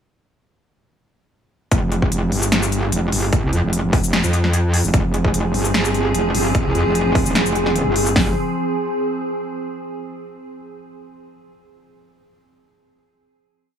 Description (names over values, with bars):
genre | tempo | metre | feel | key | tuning
heavy wobble dubstep | 149 BPM | 4/4 | half-time | F minor | A4 = 439 Hz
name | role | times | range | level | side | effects
metallic wobble bass | bass | 1.7-8.3 s | Eb1 to F2 | -19 LUFS | equal | distortion, chorus, overdrive
big-room dance drum kit | drums | 1.7-8.3 s | hi-hat, kick drum, snare drum | -19 LUFS | equal | overdrive, studio reverb
big-room dance drum kit | drums | 1.7-8.1 s | hi-hat, shaker, snare drum | -22 LUFS | left 1 dB | overdrive, studio reverb
evolving wavetable pad | sustained chords | 5.2-8.3 s | F3 to Ab4 | -22 LUFS | right 1 dB | chorus, built-in reverb, sidechain pumping
room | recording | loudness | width
light reverb, digital ambience | none | -16 LUFS | side -8 dB against mid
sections
1.7-8.2 drop; 8.2-9.8 final chord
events
drop 1.7-8.2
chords
1.7 Fm